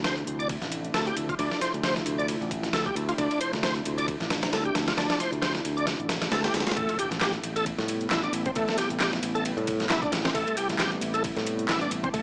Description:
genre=breakbeat, breaks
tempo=134 BPM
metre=4/4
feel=swing 56% on 16ths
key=A minor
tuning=A4 = 441 Hz
part: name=warbly tape-like pad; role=sustained chords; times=0.0-12.2 s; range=C3 to E4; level=-36 LUFS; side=equal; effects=chorus, built-in reverb, vintage 12-bit sampler grit, sidechain pumping
part: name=bright tonewheel organ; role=riff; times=0.0-12.2 s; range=A3 to D5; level=-32 LUFS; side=equal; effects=overdrive, chorus vibrato, slow rotary speaker, low-pass filter, tape echo
part: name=modern bright fingered electric bass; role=bass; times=0.0-12.2 s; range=A1 to A2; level=-35 LUFS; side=equal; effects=none
part: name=dusty soul sampler-style drum kit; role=drums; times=0.0-12.2 s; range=kick drum, ride cymbal, snare drum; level=-33 LUFS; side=equal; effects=none
part: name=house drum kit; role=drums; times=0.1-12.2 s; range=handclaps, hi-hat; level=-38 LUFS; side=equal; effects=overdrive
part: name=swell and impact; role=sound effects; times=6.1-8.6 s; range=none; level=-45 LUFS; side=equal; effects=none
room=light reverb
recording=vinyl crackle, small speaker sound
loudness=-28 LUFS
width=mono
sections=0.0-6.8 A section; 6.8-12.2 B section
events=drop 6.8-12.2; impact 6.8-8.6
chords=0.0 Dm9; 6.8 Am9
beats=0.05 0.50 0.94 | 1.39 1.84 2.29 2.73 | 3.18 3.63 4.08 4.53 | 4.97 5.42 5.87 6.32 | 6.76 7.21 7.66 8.11 | 8.56 9.00 9.45 9.90 | 10.35 10.79 11.24 11.69 | 12.14

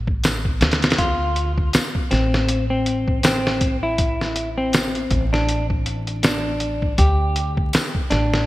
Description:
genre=trip hop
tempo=80 BPM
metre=4/4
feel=swing 57% on 16ths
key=D minor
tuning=A4 = 440 Hz
part: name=upright bass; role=bass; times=0.0-8.5 s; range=A1 to D2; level=-23 LUFS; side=equal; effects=none
part: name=trip hop sampler-style drum kit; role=drums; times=0.1-8.5 s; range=hi-hat, kick drum, snare drum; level=-20 LUFS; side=equal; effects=small room ambience, gated reverb
part: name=tambourine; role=percussion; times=0.2-7.9 s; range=none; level=-35 LUFS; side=left 3 dB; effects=none
part: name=semi-hollow electric guitar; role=melody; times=1.0-8.5 s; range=C4 to G4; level=-23 LUFS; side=left 1 dB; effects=tape echo
room=light reverb, studio ambience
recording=bright 1980s-style digital production, vinyl crackle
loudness=-18 LUFS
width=side -17 dB against mid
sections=0.0-8.5 A section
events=none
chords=0.0 D5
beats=0.24 | 0.99 1.74 2.49 3.24 | 3.99 4.74 5.49 6.24 | 6.99 7.74

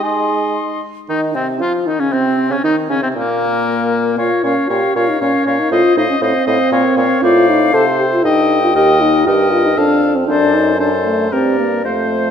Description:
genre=quick classical-period movement for wind quintet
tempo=117 BPM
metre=3/4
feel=rubato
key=unclear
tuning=A4 = 440 Hz
part: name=mellow silver concert flute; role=melody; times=0.0-12.3 s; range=C4 to C6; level=-21 LUFS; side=left 7 dB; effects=none
part: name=warm oboe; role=second line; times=0.0-12.3 s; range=Bb3 to F5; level=-20 LUFS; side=left 4 dB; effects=none
part: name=mellow French horn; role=accompaniment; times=0.0-12.3 s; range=Ab3 to A4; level=-16 LUFS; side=left 1 dB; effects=none
part: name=warm clarinet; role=accompaniment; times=0.0-12.3 s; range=Bb3 to C5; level=-22 LUFS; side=right 7 dB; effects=none
part: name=warm bassoon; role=bass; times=0.0-12.3 s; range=Eb2 to Ab4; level=-20 LUFS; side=right 3 dB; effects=none
room=moderate scoring stage reverb, RT60 1.6 s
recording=none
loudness=-12 LUFS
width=side -8 dB against mid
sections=0.0-1.1 A section; 1.1-12.3 B section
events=none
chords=0.0 Ab; 1.1 Dbmaj9/C; 2.6 Eb5; 3.7 N.C.; 4.2 Bbm; 5.7 F7/A; 6.7 Bbm; 7.2 F/A; 8.2 Eb/G; 8.8 Eb; 9.8 F; 10.3 D7/F#; 11.3 Gm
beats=0.02 0.56 | 1.09 1.61 2.12 | 2.64 3.15 3.66 | 4.17 4.69 5.20 | 5.71 6.21 6.72 | 7.22 7.73 8.24 | 8.75 9.26 9.78 | 10.29 10.80 11.32 | 11.85

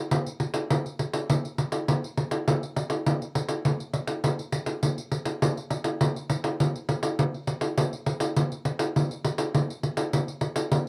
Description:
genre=samba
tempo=102 BPM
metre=4/4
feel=straight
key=none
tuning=none
part: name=pandeiro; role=percussion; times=0.1-10.9 s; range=none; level=-28 LUFS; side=equal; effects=none
room=wet booth ambience, RT60 0.2 s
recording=home recording on cassette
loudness=-28 LUFS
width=mono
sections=0.0-10.9 A section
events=none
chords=none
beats=| 0.12 0.71 1.30 1.89 | 2.48 3.07 3.65 4.25 | 4.83 5.42 6.01 6.60 | 7.19 7.78 8.37 8.96 | 9.54 10.13 10.72

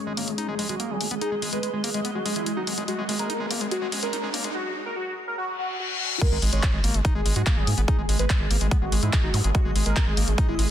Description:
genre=psychedelic trance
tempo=144 BPM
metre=4/4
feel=straight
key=unclear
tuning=A4 = 441 Hz
part: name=wide unison lead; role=melody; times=0.0-10.6 s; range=E4 to C#5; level=-31 LUFS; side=equal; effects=phaser, vintage 12-bit sampler grit, sidechain pumping, tape echo
part: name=swarming drone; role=sustained chords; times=0.0-10.7 s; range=G#3 to G#4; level=-35 LUFS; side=right 1 dB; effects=built-in reverb, sidechain pumping
part: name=riser, reverse cymbal, sub drop and zap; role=sound effects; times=2.1-9.4 s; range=none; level=-34 LUFS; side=left 1 dB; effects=none
part: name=granular cloud pad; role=texture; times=0.0-10.7 s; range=G#3 to D#6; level=-36 LUFS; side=equal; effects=built-in reverb, sidechain pumping
part: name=overdriven acid bass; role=riff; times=0.1-10.7 s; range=F#3 to D#4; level=-32 LUFS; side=moving between left 3 dB and right 3 dB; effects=auto-pan, sidechain pumping, tape echo
part: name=round analog bass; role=bass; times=0.1-10.7 s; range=G#1 to G#2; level=-26 LUFS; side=equal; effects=high-pass filter
part: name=big-room dance drum kit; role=drums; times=0.2-10.7 s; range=crash cymbal, handclaps, hi-hat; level=-29 LUFS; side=left 2 dB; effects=none
part: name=electronic kick drum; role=drums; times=6.2-10.5 s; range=none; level=-23 LUFS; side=equal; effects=none
room=light reverb, digital ambience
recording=dense, heavily limited modern master, high-pass filter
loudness=-22 LUFS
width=side -10 dB against mid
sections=0.0-6.2 A section; 6.2-10.7 B section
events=build-up 0.0-6.2; filter sweep on acid bass 0.0-6.2; riser 2.1-4.5; reverse cymbal 5.6-6.2; drop 6.2-10.7; impact 6.2-7.9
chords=0.0 G#5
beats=0.38 0.80 | 1.21 1.63 2.05 2.46 | 2.88 3.30 3.71 4.13 | 4.55 4.96 5.38 5.80 | 6.21 6.63 7.05 7.46 | 7.88 8.30 8.71 9.13 | 9.55 9.96 10.38

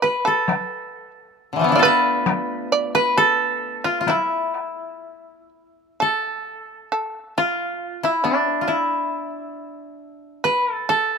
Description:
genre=japanese traditional, Japanese chamber music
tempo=61-70 BPM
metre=2/4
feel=rubato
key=E in sen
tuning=A4 = 439 Hz
part: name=koto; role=melody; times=0.0-11.2 s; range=D3 to E5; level=-20 LUFS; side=equal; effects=none
part: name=shamisen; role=second line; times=0.0-11.2 s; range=D4 to D5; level=-23 LUFS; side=right 3 dB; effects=none
part: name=taiko ensemble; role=percussion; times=0.5-4.8 s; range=none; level=-23 LUFS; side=left 5 dB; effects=none
room=moderate spring reverb, RT60 2.3 s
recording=minimal, uncompressed stereo recording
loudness=-19 LUFS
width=side -6 dB against mid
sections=0.0-6.0 A section; 6.0-11.2 B section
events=none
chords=none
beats=| 0.48 1.37 | 2.26 3.16 | 4.07 5.03 | 5.99 6.92 | 7.82 8.69 | 9.56 10.46

